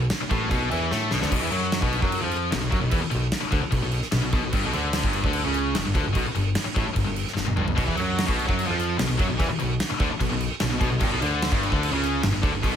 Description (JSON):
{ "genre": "hard rock", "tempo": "148 BPM", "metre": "4/4", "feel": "straight", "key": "B minor", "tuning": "A4 = 439 Hz", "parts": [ { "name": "overdriven electric guitar", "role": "riff", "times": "0.0-12.8 s", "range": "G2 to A3", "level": "-30 LUFS", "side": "right 8 dB", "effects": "none" }, { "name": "scooped high-gain guitar", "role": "riff", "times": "0.0-12.8 s", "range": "G2 to A3", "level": "-27 LUFS", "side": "left 7 dB", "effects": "distortion" }, { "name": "tight distorted guitar", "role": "riff", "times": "0.0-1.3, 7.8-12.8 s", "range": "G2 to A3", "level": "-31 LUFS", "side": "equal", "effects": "distortion" }, { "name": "picked electric bass", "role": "bass", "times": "0.0-12.7 s", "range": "G1 to A2", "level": "-29 LUFS", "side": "equal", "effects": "none" }, { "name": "gated 80s drum kit", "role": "drums", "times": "0.1-12.7 s", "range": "crash cymbal, kick drum, snare drum, toms", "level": "-26 LUFS", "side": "equal", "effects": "none" } ], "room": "light reverb", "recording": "none", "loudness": "-22 LUFS", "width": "side -9 dB against mid", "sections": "0.0-1.3 A section; 1.3-12.8 B section", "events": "drum fill 0.9-1.3, 7.4-7.8", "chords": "0.0 Bm; 1.3 B5; 4.5 G5; 7.8 B5; 11.0 G5", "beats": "0.10 0.51 0.91 | 1.31 1.72 2.12 2.53 | 2.93 3.33 3.74 4.14 | 4.54 4.95 5.35 5.76 | 6.16 6.56 6.97 7.37 | 7.78 8.18 8.58 8.99 | 9.39 9.80 10.20 10.61 | 11.01 11.42 11.82 12.23 | 12.63" }